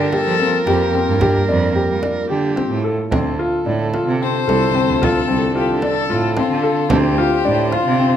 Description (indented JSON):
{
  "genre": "contemporary instrumental, chamber music in an uneven meter",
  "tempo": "221 BPM (eighths)",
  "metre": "7/8",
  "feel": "straight",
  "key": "unclear",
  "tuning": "A4 = 440 Hz",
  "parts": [
    { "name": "dark violin", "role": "melody", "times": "0.0-8.2 s", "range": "D4 to C5", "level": "-21 LUFS", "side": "left 9 dB", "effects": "none" },
    { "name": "overdriven harmonica", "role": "second line", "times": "0.0-8.2 s", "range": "D4 to C5", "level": "-23 LUFS", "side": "right 2 dB", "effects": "none" },
    { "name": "warbly tape-like pad", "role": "sustained chords", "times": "0.0-8.2 s", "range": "D3 to F4", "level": "-28 LUFS", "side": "left 2 dB", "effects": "chorus, built-in reverb" },
    { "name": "warm baby grand piano", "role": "arpeggios", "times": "0.0-8.2 s", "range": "C4 to A4", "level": "-20 LUFS", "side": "left 3 dB", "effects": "none" },
    { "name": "rich cello", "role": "bass", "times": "0.0-8.1 s", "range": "C2 to G3", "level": "-20 LUFS", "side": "right 4 dB", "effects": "none" },
    { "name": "frame drum", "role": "percussion", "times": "0.1-8.0 s", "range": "none", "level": "-24 LUFS", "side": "right 2 dB", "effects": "none" }
  ],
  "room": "moderate recital hall reverb, RT60 1.4 s",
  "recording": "none",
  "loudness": "-15 LUFS",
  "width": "side -10 dB against mid",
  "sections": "0.0-8.2 A section",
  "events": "none",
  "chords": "0.0 Gm11; 3.1 Dm7",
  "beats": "0.12 0.40 0.67 0.94 | 1.21 1.48 1.75 2.02 2.29 2.57 2.84 | 3.12 3.39 3.67 3.94 4.21 4.48 4.75 | 5.02 5.29 5.56 5.83 6.10 6.37 6.64 | 6.91 7.18 7.45 7.73 8.00"
}